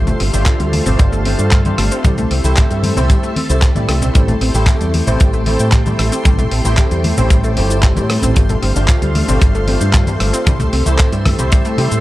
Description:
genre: nu-disco, nu disco.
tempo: 114 BPM.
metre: 4/4.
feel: straight.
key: A minor.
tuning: A4 = 440 Hz.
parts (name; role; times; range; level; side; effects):
barky tine electric piano; accompaniment; 0.0-12.0 s; A3 to D5; -21 LUFS; equal; overdrive, ensemble chorus, tape echo.
string machine, full ensemble; sustained chords; 0.0-12.0 s; A4 to C6; -27 LUFS; equal; ensemble chorus, sidechain pumping.
fingered electric bass with an envelope filter; bass; 0.0-12.0 s; G1 to C3; -16 LUFS; equal; none.
analog pluck; arpeggios; 0.1-12.0 s; G3 to G4; -23 LUFS; left 1 dB; chorus, sidechain pumping, dub echo.
dusty soul sampler-style drum kit; drums; 0.1-12.0 s; handclaps, hi-hat, rim click, shaker; -23 LUFS; left 1 dB; tape echo.
congas; percussion; 0.1-11.9 s; none; -24 LUFS; left 1 dB; none.
kick drum; drums; 0.5-11.6 s; none; -13 LUFS; equal; none.
room: small room ambience.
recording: echo-heavy mix.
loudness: -12 LUFS.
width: side -16 dB against mid.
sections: 0.0-12.0 A section.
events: none.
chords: 0.0 G9sus4; 2.0 C6; 4.2 Am7; 8.4 G9sus4; 10.5 C6.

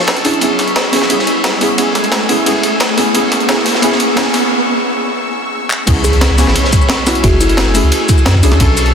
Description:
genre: liquid drum and bass.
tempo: 176 BPM.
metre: 4/4.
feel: straight.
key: unclear.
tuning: A4 = 439 Hz.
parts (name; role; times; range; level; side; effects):
deep mellow chord stab; accompaniment; 0.0-8.9 s; A3 to A4; -16 LUFS; equal; chorus, ping-pong delay.
lush unison pad; sustained chords; 0.0-8.9 s; A3 to E6; -21 LUFS; left 1 dB; chorus.
riser and impact; sound effects; 0.0-7.2 s; none; -20 LUFS; right 1 dB; none.
warm sub bass; bass; 0.1-3.8, 5.9-8.9 s; F#1 to F#2; -12 LUFS; equal; high-pass filter.
breakbeat sampler-style drum kit; drums; 0.1-8.9 s; crash cymbal, handclaps, hi-hat, shaker, snare drum; -17 LUFS; equal; high-pass filter on hats, studio reverb, high-pass filter on snare, high-pass filter on cymbals, high-pass filter on perc.
crunchy breakbeat drum kit; drums; 0.1-8.9 s; ride cymbal, snare drum; -19 LUFS; left 1 dB; high-pass filter on cymbals, studio reverb, high-pass filter on snare, high-pass filter on room.
electronic kick drum; drums; 5.9-8.7 s; none; -13 LUFS; equal; studio reverb.
buzzing kalimba; melody; 6.0-7.7 s; E4 to G#4; -20 LUFS; equal; ping-pong delay.
room: moderate huge ambient reverb, RT60 6.2 s.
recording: dense, heavily limited modern master.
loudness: -10 LUFS.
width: side -7 dB against mid.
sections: 0.0-5.9 A section; 5.9-8.9 B section.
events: build-up 0.0-5.9; riser 0.0-4.5; break 4.5-5.9; drum fill 5.7; drop 5.9-8.9; impact 5.9-7.2.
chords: 0.4 C#m7; 1.8 F#m9; 3.0 Bsus24; 5.9 C#m7; 7.2 F#m9; 8.4 Bm11.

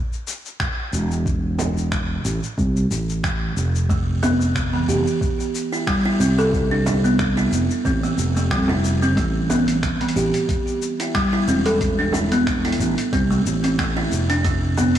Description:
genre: organic downtempo.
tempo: 91 BPM.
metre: 4/4.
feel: swing 54% on 16ths.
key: A minor.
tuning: A4 = 440 Hz.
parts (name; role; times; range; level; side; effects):
dusty soul sampler-style drum kit; drums; 0.1-15.0 s; finger snaps, hi-hat, shaker; -29 LUFS; left 2 dB; small room ambience, soft clipping on snare.
electronic kick drum; drums; 0.6-14.6 s; none; -25 LUFS; equal; small room ambience.
fretless electric bass; bass; 0.9-15.0 s; E1 to F2; -21 LUFS; right 1 dB; tube saturation.
frame drum; percussion; 1.6-14.9 s; none; -29 LUFS; right 4 dB; none.
buzzing kalimba; arpeggios; 3.9-14.9 s; E3 to A4; -20 LUFS; equal; digital delay.
room: light reverb, digital ambience.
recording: blown-out, overdriven recording, overdrive, small room ambience.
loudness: -18 LUFS.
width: side -10 dB against mid.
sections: 0.0-15.0 A section.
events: none.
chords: 0.0 A5; 3.9 F; 9.2 Am; 14.4 F.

